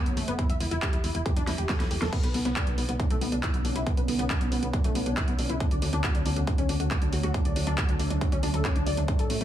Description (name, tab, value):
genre	uplifting trance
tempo	138 BPM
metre	4/4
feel	straight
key	unclear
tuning	A4 = 439 Hz
part	wide unison pluck	arpeggios	0.1-9.4 s	F#3 to E5	-32 LUFS	left 2 dB	ensemble chorus, sidechain pumping, digital delay
part	solid FM bass	bass	0.1-9.4 s	E1 to D2	-30 LUFS	equal	sidechain pumping
part	big-room dance drum kit	drums	0.1-9.4 s	crash cymbal, handclaps, hi-hat, snare drum	-34 LUFS	equal	overdrive, studio reverb
part	electronic kick drum	drums	0.4-9.2 s	none	-27 LUFS	equal	overdrive, studio reverb
part	shimmering ambient pad	sustained chords	2.9-9.4 s	D3 to D4	-34 LUFS	right 2 dB	chorus, built-in reverb, sidechain pumping
room	little or no reverb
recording	heavily compressed radio sound, multiband compression, small room ambience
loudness	-24 LUFS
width	side -11 dB against mid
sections	0.0-9.4 A section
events	drum fill 1.5-2.1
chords	0.4 Em; 2.1 Bmadd9; 5.6 D